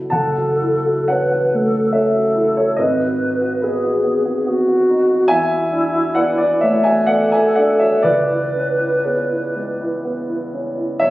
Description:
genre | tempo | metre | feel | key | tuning
classical, impressionist duo for alto flute and grand piano | 56-73 BPM | 3/4 | rubato | F# minor | A4 = 441 Hz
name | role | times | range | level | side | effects
dark grand piano | accompaniment | 0.0-11.1 s | F#1 to A5 | -17 LUFS | equal | none
wooden-headed alto flute | melody | 0.1-10.5 s | E4 to B4 | -18 LUFS | equal | none
room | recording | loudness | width
moderate scoring stage reverb, RT60 1.8 s | recorded on a phone in the room, club reverb, compression | -15 LUFS | side -17 dB against mid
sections
0.1-11.1 A section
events
none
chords
0.1 F#m7; 2.8 G#m7; 5.3 E9sus4; 8.1 C#m7

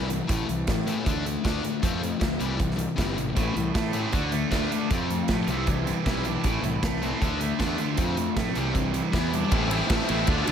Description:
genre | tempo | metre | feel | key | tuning
indie rock | 156 BPM | 4/4 | straight | A minor | A4 = 440 Hz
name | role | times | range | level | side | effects
high-gain distorted guitar | riff | 0.0-10.5 s | A2 to F4 | -28 LUFS | left 5 dB | distortion
fuzz fingered electric bass | bass | 0.0-10.5 s | G1 to A2 | -30 LUFS | right 1 dB | overdrive
big rock drum kit | drums | 0.1-10.5 s | hi-hat, kick drum, ride cymbal, snare drum | -28 LUFS | right 1 dB | none
cranked stack guitar | riff | 3.4-10.5 s | E2 to F4 | -30 LUFS | right 7 dB | overdrive, lush chorus, analog delay
room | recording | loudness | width
moderate lush hall reverb, RT60 2.0 s | dreamy mix soaked in reverb | -23 LUFS | side -8 dB against mid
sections
0.0-9.5 A section; 9.5-10.5 B section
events
none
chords
0.3 Am; 1.1 D5; 1.8 F; 2.4 C; 3.4 Am; 4.1 Dm; 4.9 F; 5.5 Cadd9; 6.4 Am; 7.2 Dm; 8.0 F; 8.6 C; 9.1 Em7; 9.5 Am

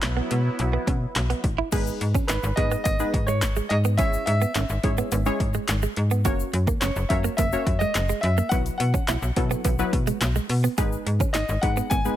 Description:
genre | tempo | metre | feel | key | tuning
dance-pop | 106 BPM | 4/4 | straight | unclear | A4 = 438 Hz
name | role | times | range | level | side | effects
glassy wavetable pluck | accompaniment | 0.0-12.2 s | F#3 to C#5 | -30 LUFS | left 1 dB | chorus, sidechain pumping
filtered supersaw swell | sustained chords | 0.0-1.7 s | F#3 to E4 | -32 LUFS | equal | sidechain pumping
direct-recorded clean electric guitar | riff | 0.0-12.0 s | G#3 to G#4 | -30 LUFS | right 9 dB | analog chorus
slap-like FM bass | bass | 0.0-12.1 s | F#1 to B2 | -24 LUFS | equal | sidechain pumping
punchy analog drum machine | drums | 0.0-12.0 s | crash cymbal, handclaps, hi-hat, kick drum, snare drum | -26 LUFS | equal | overdrive
egg shaker | percussion | 1.7-12.2 s | none | -38 LUFS | left 14 dB | none
warm grand piano | melody | 2.3-12.2 s | B4 to G#5 | -28 LUFS | left 1 dB | ping-pong delay
room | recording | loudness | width
digital ambience | none | -21 LUFS | side -12 dB against mid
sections
0.0-1.7 A section; 1.7-12.2 B section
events
none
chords
0.0 Bsus4; 1.7 G#m; 4.0 C#m/G#; 6.3 F#; 8.5 Bsus4; 10.8 G#m

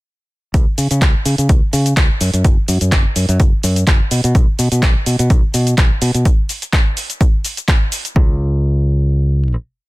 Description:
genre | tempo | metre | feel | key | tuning
piano house | 126 BPM | 4/4 | swing 54% on 16ths | unclear | A4 = 440 Hz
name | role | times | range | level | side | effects
fingered electric bass | bass | 0.5-9.5 s | F#1 to C#3 | -15 LUFS | equal | tube saturation, sidechain pumping
electronic kick drum | drums | 0.5-8.3 s | none | -13 LUFS | equal | none
punchy analog drum machine | drums | 0.5-8.1 s | cabasa, handclaps, hi-hat | -20 LUFS | equal | none
room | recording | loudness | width
little or no reverb | dense, heavily limited modern master | -12 LUFS | side -20 dB against mid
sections
0.5-8.2 drop; 8.2-9.9 final note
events
drop 0.5-8.2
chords
none

